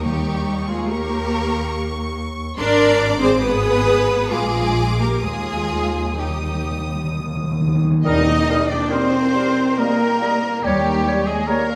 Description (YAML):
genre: classical, slow romantic movement for symphony orchestra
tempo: 63-72 BPM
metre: 3/4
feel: rubato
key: Eb major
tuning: A4 = 441 Hz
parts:
  - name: rich studio violin section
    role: melody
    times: 0.0-11.8 s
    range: G4 to Eb6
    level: -31 LUFS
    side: equal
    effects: none
  - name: rich studio violin section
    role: second line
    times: 0.0-11.8 s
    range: G4 to Eb5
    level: -27 LUFS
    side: equal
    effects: none
  - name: warm studio viola section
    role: accompaniment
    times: 0.0-11.8 s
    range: Eb4 to G5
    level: -28 LUFS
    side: equal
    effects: none
  - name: rich studio cello section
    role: bass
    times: 0.0-11.8 s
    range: G3 to Eb4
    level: -26 LUFS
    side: equal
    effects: none
  - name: rich studio double bass section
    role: bass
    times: 0.0-11.3 s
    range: Ab1 to Eb2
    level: -27 LUFS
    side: equal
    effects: none
  - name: timpani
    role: percussion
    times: 0.1-1.3, 5.2-9.3 s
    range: Eb3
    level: -26 LUFS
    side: equal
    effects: none
  - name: silver concert flute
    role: second line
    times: 8.0-11.8 s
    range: G5 to Eb6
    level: -29 LUFS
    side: equal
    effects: none
  - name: warm bassoon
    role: accompaniment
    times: 8.0-11.6 s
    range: G3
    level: -29 LUFS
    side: equal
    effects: none
  - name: clear oboe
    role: second line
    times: 8.1-11.8 s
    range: G4 to Eb5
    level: -29 LUFS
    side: equal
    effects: none
  - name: mellow clarinet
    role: second line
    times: 8.1-11.7 s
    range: Bb4 to Db5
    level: -31 LUFS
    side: equal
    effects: none
  - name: mellow French horn section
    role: sustained chords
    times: 8.1-11.8 s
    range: G3 to Eb4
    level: -26 LUFS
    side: equal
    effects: none
  - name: tam-tam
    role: percussion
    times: 8.1-11.4 s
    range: none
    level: -32 LUFS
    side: equal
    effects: none
room: wet recital hall reverb, RT60 1.5 s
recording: none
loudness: -19 LUFS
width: mono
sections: 0.0-8.0 A section; 8.0-11.8 B section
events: timpani fill 5.2-8.0; band accent 8.0-8.9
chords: 0.1 Eb7; 2.6 Ab; 3.4 Abm; 4.3 Bb7; 5.2 Eb; 10.6 Eb7